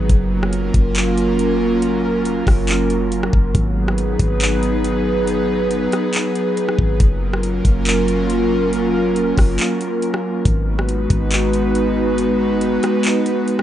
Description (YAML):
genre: hip hop, atmospheric cloud-rap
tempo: 139 BPM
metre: 4/4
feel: half-time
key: G# dorian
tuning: A4 = 441 Hz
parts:
  - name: airy breathy pad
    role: sustained chords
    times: 0.0-13.6 s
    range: F#3 to B4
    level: -17 LUFS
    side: right 1 dB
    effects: chorus, sidechain pumping
  - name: warm 808-style bass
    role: bass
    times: 0.0-12.8 s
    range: F#1 to G#1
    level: -21 LUFS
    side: equal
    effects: none
  - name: trap drum kit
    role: drums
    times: 0.1-13.6 s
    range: handclaps, hi-hat, kick drum, rim click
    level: -19 LUFS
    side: equal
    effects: none
room: little or no reverb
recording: rough home demo mix, nothing above 10.3 kHz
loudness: -15 LUFS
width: side -12 dB against mid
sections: 0.0-10.5 A section; 10.5-13.6 A section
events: break 9.6-10.5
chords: 0.1 F#maj7; 3.5 G#m7; 7.0 F#maj7; 10.5 G#m7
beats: | 0.10 0.53 0.96 1.39 | 1.82 2.25 2.68 3.12 | 3.55 3.98 4.41 4.84 | 5.27 5.71 6.14 6.57 | 7.00 7.43 7.86 8.30 | 8.73 9.16 9.59 10.02 | 10.45 10.89 11.32 11.75 | 12.18 12.61 13.04 13.48